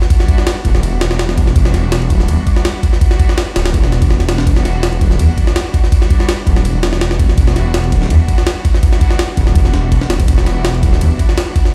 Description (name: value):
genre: drum and bass, jungle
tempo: 165 BPM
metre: 4/4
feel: swing 53% on 16ths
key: E minor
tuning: A4 = 442 Hz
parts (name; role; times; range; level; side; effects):
- clear studio string section; sustained chords; 0.0-11.7 s; G3 to F#4; -26 LUFS; equal; none
- jungle sampler-style drum kit; drums; 0.0-11.7 s; kick drum, ride cymbal, snare drum; -15 LUFS; equal; none
- detuned saw bass; bass; 0.6-11.1 s; D1 to E2; -16 LUFS; equal; none
room: little or no reverb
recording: played on a big sound system in a bare room, stone room reverb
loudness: -13 LUFS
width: mono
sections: 0.0-11.7 A section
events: none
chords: 0.0 Em9